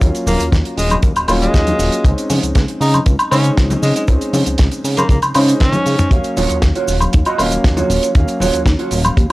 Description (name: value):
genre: nu-disco, nu disco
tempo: 118 BPM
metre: 4/4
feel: straight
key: unclear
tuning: A4 = 440 Hz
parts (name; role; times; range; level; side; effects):
- dark grand piano; accompaniment; 0.0-9.3 s; Gb3 to F5; -21 LUFS; equal; sidechain pumping
- chorused synth bass; bass; 0.0-9.3 s; Eb1 to Db3; -17 LUFS; equal; sidechain pumping
- damped 70s drum kit; drums; 0.0-9.3 s; cabasa, hi-hat, snare drum, toms, woodblock; -20 LUFS; equal; none
- kick drum; drums; 0.0-9.3 s; none; -13 LUFS; equal; none
- bright tenor saxophone; melody; 0.3-6.1 s; Ab3 to Eb4; -22 LUFS; equal; tape echo
- congas; percussion; 0.3-9.1 s; none; -25 LUFS; left 2 dB; none
- mellow electric guitar; riff; 6.4-9.3 s; F4 to Eb5; -20 LUFS; right 5 dB; lush chorus, tape echo
room: small room ambience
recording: dry, gritty hardware recording, transformer saturation, cassette tape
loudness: -12 LUFS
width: side -19 dB against mid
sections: 0.0-9.3 A section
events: drum fill 5.6-6.1; clean electric guitar fill 9.2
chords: 0.0 Ebm9; 2.0 Bbm11/Db (rootless); 6.1 Ebm9